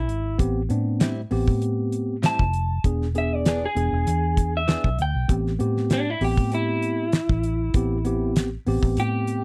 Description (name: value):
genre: straight-eighth soul blues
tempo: 98 BPM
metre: 4/4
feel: swing 54% on 16ths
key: A minor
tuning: A4 = 438 Hz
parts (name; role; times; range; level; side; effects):
- electric guitar through a small old amp; melody; 0.0-9.4 s; D4 to A5; -29 LUFS; equal; slapback echo
- vintage muted fingered electric bass; bass; 0.0-9.4 s; E1 to A2; -28 LUFS; equal; none
- damped 70s drum kit; drums; 0.1-9.4 s; hi-hat, kick drum, snare drum; -24 LUFS; equal; none
- mellow tine electric piano; accompaniment; 0.4-9.4 s; B3 to G#4; -29 LUFS; equal; none
- direct-recorded clean electric guitar; stabs; 1.0-4.9 s; A2 to G#4; -33 LUFS; equal; slapback echo
room: little or no reverb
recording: dry, close 1970s-style studio recording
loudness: -23 LUFS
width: mono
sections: 0.0-5.3 A section; 5.3-9.4 B section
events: clean electric guitar solo 5.3-9.4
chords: 0.4 Am7; 2.8 E7; 5.3 Am7